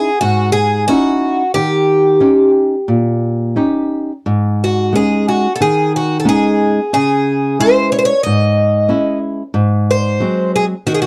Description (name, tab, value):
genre	fado-style ballad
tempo	90 BPM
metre	4/4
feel	rubato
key	C# harmonic minor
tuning	A4 = 440 Hz
part	picked twelve-string acoustic guitar	melody	0.0-11.1 s	F#4 to D#5	-16 LUFS	equal	none
part	flamenco guitar	accompaniment	0.0-11.1 s	G#2 to G4	-17 LUFS	equal	none
room	light reverb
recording	dry, close 1970s-style studio recording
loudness	-14 LUFS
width	mono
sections	0.0-11.1 A section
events	none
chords	0.0 C#madd9; 1.5 D#7; 4.2 G#sus4; 6.9 C#m; 9.6 G#7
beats	0.21 0.88 | 1.54 2.21 2.88 3.56 | 4.25 4.93 5.60 6.26 | 6.93 7.59 8.25 8.90 | 9.55 10.21 10.86